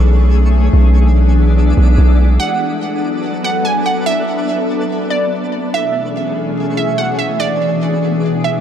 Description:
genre	hip hop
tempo	144 BPM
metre	4/4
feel	half-time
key	B dorian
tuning	A4 = 441 Hz
part	glassy FM pad	sustained chords	0.0-8.6 s	B2 to A4	-18 LUFS	left 3 dB	ensemble chorus, built-in reverb
part	long sustained 808-style bass	bass	0.0-2.4 s	B1	-9 LUFS	equal	none
part	twinkling granular texture	texture	0.0-8.6 s	B2 to D5	-26 LUFS	right 1 dB	built-in reverb
part	glassy wavetable pluck	melody	2.4-8.6 s	D5 to G#5	-18 LUFS	right 4 dB	chorus, digital delay
room	light reverb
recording	dark, warm production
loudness	-12 LUFS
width	side -9 dB against mid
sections	0.0-2.4 A section; 2.4-8.6 B section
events	none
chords	0.0 Amaj7/B; 0.7 E7/B; 2.4 Bm7; 5.7 Amaj7/B; 7.4 E7/B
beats	0.32 | 0.73 1.15 1.56 1.98 | 2.40 2.81 3.23 3.65 | 4.07 4.48 4.90 5.32 | 5.73 6.15 6.57 6.98 | 7.40 7.82 8.23

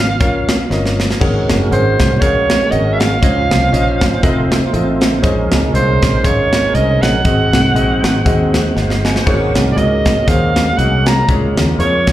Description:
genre	uptempo gospel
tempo	119 BPM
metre	4/4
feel	swing 57% on 8ths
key	unclear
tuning	A4 = 444 Hz
part	breathy soprano saxophone	melody	0.0-12.1 s	C5 to Bb5	-18 LUFS	right 2 dB	slapback echo, tape echo
part	warm concert grand piano	accompaniment	0.0-12.1 s	Ab2 to C6	-19 LUFS	left 2 dB	slapback echo
part	fingered electric bass	bass	0.0-12.1 s	F1 to F2	-16 LUFS	equal	none
part	crisp fusion drum kit	drums	0.2-12.1 s	crash cymbal, hi-hat, kick drum, snare drum	-16 LUFS	equal	slapback echo
part	percussive tonewheel organ	sustained chords	1.2-12.1 s	F3 to Gb5	-20 LUFS	right 3 dB	chorus vibrato, slow rotary speaker
room	light reverb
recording	live gig heard through the venue's PA, club reverb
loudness	-11 LUFS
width	side -13 dB against mid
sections	0.0-12.1 A section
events	drum fill 0.7-1.2, 8.8-9.3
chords	0.0 Db69; 1.2 Ab9sus4; 3.2 Dbmaj9; 4.2 F7; 5.2 Bbm11; 7.3 Ab7; 9.3 Ab9sus4; 11.3 Db6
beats	0.21 0.71 | 1.22 1.72 2.22 2.72 | 3.23 3.73 4.23 4.74 | 5.24 5.74 6.24 6.75 | 7.25 7.75 8.26 8.76 | 9.27 9.77 10.28 10.78 | 11.28 11.79

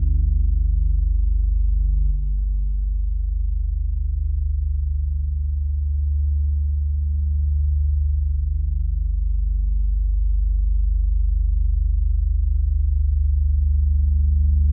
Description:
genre	ambient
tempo	free time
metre	none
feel	none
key	unclear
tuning	A4 = 438 Hz
part	deep rumbling drone	solo	0.0-14.7 s	G1 to D2	-19 LUFS	equal	built-in reverb
room	wet cathedral reverb, RT60 6.1 s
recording	dark, warm production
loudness	-20 LUFS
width	side -31 dB against mid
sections	0.0-2.1 A section; 2.1-14.7 B section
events	none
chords	0.0 G5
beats	free time

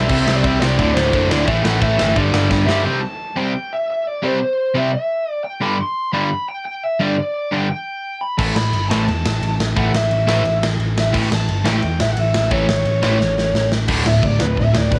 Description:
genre	punk rock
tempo	174 BPM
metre	4/4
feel	straight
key	unclear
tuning	A4 = 440 Hz
part	bluesy overdriven lead guitar	melody	0.0-15.0 s	B4 to C6	-24 LUFS	equal	distortion, cassette tape
part	cranked stack guitar	riff	0.0-15.0 s	D2 to C4	-25 LUFS	equal	overdrive, cassette tape
part	cranked stack guitar	riff	0.0-15.0 s	D2 to C4	-23 LUFS	equal	overdrive, cassette tape
part	sludgy distorted guitar	riff	0.0-2.9 s	D2 to C4	-28 LUFS	equal	none
part	overdriven picked electric bass	bass	0.0-2.8, 8.4-15.0 s	D1 to G2	-22 LUFS	equal	none
part	big rock drum kit	drums	0.1-2.8, 8.4-15.0 s	crash cymbal, kick drum, ride cymbal, snare drum	-24 LUFS	equal	cassette tape
room	little or no reverb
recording	home recording on cassette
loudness	-18 LUFS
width	mono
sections	0.0-2.9 A section; 2.9-13.9 B section; 13.9-15.0 C section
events	drum fill 2.5-2.9, 13.2-13.9; lead electric guitar solo 13.9-15.0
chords	0.1 C5; 0.8 D; 1.5 A5; 2.2 G5; 2.9 C; 5.6 G; 8.4 A; 13.9 D5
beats	| 0.09 0.44 0.78 1.13 | 1.47 1.82 2.16 2.51 | 2.86 3.20 3.55 3.90 | 4.24 4.59 4.93 5.28 | 5.62 5.97 6.32 6.66 | 7.01 7.35 7.70 8.04 | 8.39 8.73 9.08 9.42 | 9.77 10.11 10.45 10.80 | 11.14 11.48 11.83 12.17 | 12.52 12.86 13.20 13.55 | 13.89 14.23 14.58 14.92

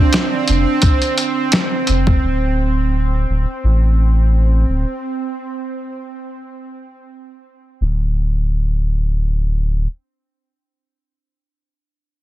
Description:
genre	trip hop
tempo	86 BPM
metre	4/4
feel	swing 56% on 16ths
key	unclear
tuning	A4 = 440 Hz
part	dark analog pad	sustained chords	0.0-2.2 s	D4	-23 LUFS	right 4 dB	chorus, vintage 12-bit sampler grit
part	bowed-like drone	texture	0.0-5.0 s	C4	-22 LUFS	right 4 dB	built-in reverb
part	dusty soul sampler-style drum kit	drums	0.1-2.2 s	hi-hat, kick drum, snare drum	-15 LUFS	equal	none
part	soft dub sub bass	bass	0.5-9.9 s	D1 to A1	-15 LUFS	equal	tube saturation
room	digital ambience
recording	heavily compressed radio sound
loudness	-15 LUFS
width	side -14 dB against mid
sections	0.0-7.8 A section; 7.8-10.6 B section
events	none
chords	0.0 Dm7; 2.2 Am/D; 7.8 N.C.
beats	0.13 0.83 1.52 | 2.22 2.92 3.62 4.31 | 5.01 5.71 6.41 7.11 | 7.80 8.50 9.20

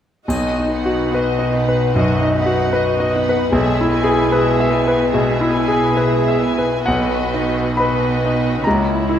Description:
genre	classical, romantic movement for piano and orchestra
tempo	62-78 BPM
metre	4/4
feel	rubato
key	B major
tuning	A4 = 440 Hz
part	bright concert grand piano	melody	0.3-9.2 s	B1 to B5	-16 LUFS	left 2 dB	none
part	warm studio violin section	second line	0.3-9.2 s	E4 to G#5	-25 LUFS	left 2 dB	none
part	dark symphonic viola section	accompaniment	0.3-9.2 s	G#3 to G#4	-24 LUFS	right 2 dB	none
part	rich symphonic cello section	bass	0.3-9.2 s	B2 to C#3	-23 LUFS	right 4 dB	none
part	triangle	percussion	0.3-1.9 s	none	-39 LUFS	left 1 dB	none
room	moderate concert hall reverb, RT60 2.1 s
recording	none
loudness	-15 LUFS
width	side -9 dB against mid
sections	0.3-6.9 A section; 6.9-9.2 B section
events	none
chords	0.3 B; 3.5 E/B; 6.9 B; 8.7 A#dim/C#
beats	| 0.29 1.13 1.94 2.74 | 3.53 4.30 5.12 5.97 | 6.87 7.80 8.65

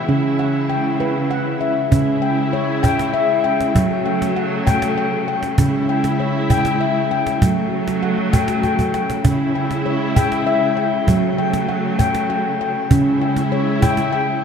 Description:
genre	world meditative, meditative tuned percussion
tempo	66 BPM (dotted quarters)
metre	6/8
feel	straight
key	unclear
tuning	A4 = 440 Hz
part	rich symphonic string section	sustained chords	0.0-14.4 s	C#3 to E4	-21 LUFS	equal	stereo widening, shimmer reverb
part	handpan	arpeggios	0.0-14.4 s	C#3 to G5	-18 LUFS	left 1 dB	shimmer reverb
part	cajon	percussion	1.9-14.1 s	none	-18 LUFS	right 2 dB	none
room	wet echo chamber reverb, RT60 1.6 s, small room ambience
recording	dark, warm production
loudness	-16 LUFS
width	side -7 dB against mid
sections	0.0-1.9 A section; 1.9-14.4 B section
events	drum fill 8.6-9.2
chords	0.1 C#m; 3.7 F#m; 5.6 C#m; 7.4 F#m; 9.2 C#m; 11.1 F#m; 12.9 C#m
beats	| 0.09 1.00 | 1.92 2.83 | 3.75 4.66 | 5.58 6.50 | 7.41 8.33 | 9.24 10.16 | 11.07 11.99 | 12.90 13.82

